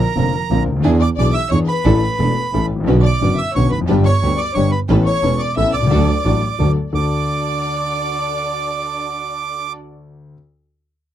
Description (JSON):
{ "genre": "tango", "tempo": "178 BPM", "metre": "3/4", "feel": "rubato", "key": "D major", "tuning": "A4 = 440 Hz", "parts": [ { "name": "bandoneon", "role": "melody", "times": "0.0-9.7 s", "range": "Bb5 to E6", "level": "-23 LUFS", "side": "right 7 dB", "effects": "none" }, { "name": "rich chamber violin section", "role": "second line", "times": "0.0-9.7 s", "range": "Bb4 to E5", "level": "-24 LUFS", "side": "left 4 dB", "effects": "none" }, { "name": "clear concert grand piano", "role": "accompaniment", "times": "0.2-10.3 s", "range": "E1 to A4", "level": "-19 LUFS", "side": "left 4 dB", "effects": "none" }, { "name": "clear symphonic string section", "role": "stabs", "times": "0.2-9.7 s", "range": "C4 to B4", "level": "-28 LUFS", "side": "right 5 dB", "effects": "none" }, { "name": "rich double bass", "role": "bass", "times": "0.2-7.1 s", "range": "E1 to E2", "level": "-18 LUFS", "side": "right 2 dB", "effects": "none" } ], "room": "little or no reverb", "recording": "dry, close 1970s-style studio recording", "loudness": "-15 LUFS", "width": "side -11 dB against mid", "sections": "0.0-6.9 A section; 6.9-9.0 B section", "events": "none", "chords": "0.0 Bbadd9; 0.8 E7; 1.9 Asus4; 2.5 A; 2.9 Bmadd9; 3.9 G; 4.9 Aadd9; 5.9 D" }